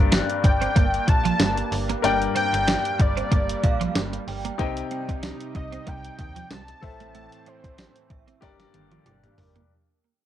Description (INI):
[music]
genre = 1980s-style pop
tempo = 94 BPM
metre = 4/4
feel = swing 55% on 16ths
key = G minor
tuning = A4 = 440 Hz
[part]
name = clear concert grand piano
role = accompaniment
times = 0.0-9.7 s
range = G2 to G5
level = -29 LUFS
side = left 8 dB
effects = cassette tape, plate reverb
[part]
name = chorused pulse-width pad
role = sustained chords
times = 0.0-9.7 s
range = C3 to Eb4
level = -35 LUFS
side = right 9 dB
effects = cassette tape
[part]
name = slap-like FM bass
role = bass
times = 0.0-9.6 s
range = G1 to Eb2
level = -30 LUFS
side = equal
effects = none
[part]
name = twelve-string electric guitar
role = riff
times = 0.1-9.6 s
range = F3 to D4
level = -30 LUFS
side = right 8 dB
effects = ensemble chorus, cassette tape, analog delay
[part]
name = clean 12-bit digital drum machine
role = drums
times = 0.1-9.7 s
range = hi-hat, kick drum, snare drum, tambourine, toms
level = -22 LUFS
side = equal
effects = none
[part]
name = wide unison lead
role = melody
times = 0.4-8.1 s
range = C5 to A5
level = -27 LUFS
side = left 1 dB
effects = none
[part]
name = synth chime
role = second line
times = 3.6-9.7 s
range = Bb4 to G5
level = -36 LUFS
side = right 8 dB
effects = ensemble chorus, tremolo, cassette tape, analog delay
[part]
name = mellow synth brass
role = stabs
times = 8.7-9.5 s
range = Bb3 to G4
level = -55 LUFS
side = equal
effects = none
[sound]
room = moderate studio reverb, RT60 0.5 s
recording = home recording on cassette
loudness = -20 LUFS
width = side -11 dB against mid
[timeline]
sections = 0.0-9.7 A section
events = fade-out 0.0-9.7; band accent 7.1-9.7; drum fill 8.4-9.7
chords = 0.0 Gm; 4.6 Cm; 6.8 Am; 8.4 Gm